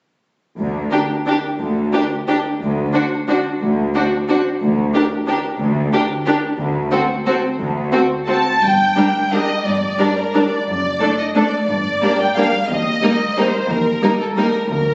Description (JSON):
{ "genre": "classical, orchestral ballroom waltz", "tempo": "179 BPM", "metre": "3/4", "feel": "uneven beats, rubato", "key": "G minor", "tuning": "A4 = 440 Hz", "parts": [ { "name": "rich symphonic cello section", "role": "bass", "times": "0.6-14.9 s", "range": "D2 to G2", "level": "-24 LUFS", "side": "equal", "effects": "none" }, { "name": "rich symphonic double bass section", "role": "bass", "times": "0.6-14.9 s", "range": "F#1 to Eb2", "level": "-31 LUFS", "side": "equal", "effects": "none" }, { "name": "dark symphonic violin section", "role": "melody", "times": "0.9-14.9 s", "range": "A4 to A5", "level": "-23 LUFS", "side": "equal", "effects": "none" }, { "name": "rich symphonic violin section", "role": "second line", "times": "0.9-14.5 s", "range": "D4 to Bb4", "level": "-25 LUFS", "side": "equal", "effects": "none" }, { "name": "rich symphonic viola section", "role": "accompaniment", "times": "0.9-14.4 s", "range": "G3 to D4", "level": "-22 LUFS", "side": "equal", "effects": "none" } ], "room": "wet scoring stage reverb, RT60 1.8 s", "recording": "recorded on a phone in the room, club reverb, nothing above 7.9 kHz", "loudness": "-18 LUFS", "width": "mono", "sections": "0.6-8.6 A section; 8.6-14.9 B section", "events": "none", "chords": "0.6 N.C.; 6.6 D7(no3); 8.6 Gm; 10.7 D/F#; 11.7 Gm; 12.7 Eb" }